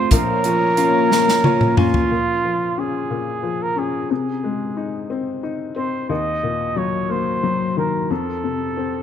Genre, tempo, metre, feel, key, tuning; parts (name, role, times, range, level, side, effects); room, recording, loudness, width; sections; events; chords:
six-eight pop ballad; 60 BPM (dotted quarters); 6/8; straight; Bb minor; A4 = 440 Hz
clear flugelhorn; melody; 0.0-9.0 s; F4 to Eb5; -21 LUFS; right 2 dB; digital delay
clear upright piano; accompaniment; 0.0-9.0 s; F1 to Ab5; -22 LUFS; left 5 dB
warm analog pad; sustained chords; 0.0-2.1 s; Bb3 to Db5; -23 LUFS; left 1 dB; chorus
direct-recorded clean electric guitar; arpeggios; 0.0-2.7 s; F3 to F4; -27 LUFS; right 7 dB; spring reverb
natural country drum kit; drums; 0.1-2.1 s; hi-hat, kick drum, snare drum, toms; -19 LUFS; equal; gated reverb
moderate plate reverb, RT60 2.9 s; bright 1980s-style digital production; -18 LUFS; side -9 dB against mid
0.0-2.1 A section; 2.1-9.0 B section
drum fill 1.1-2.1; upright piano fill 1.1-2.1
0.1 Bbm; 4.1 Ab/C; 6.1 Ebm; 8.1 F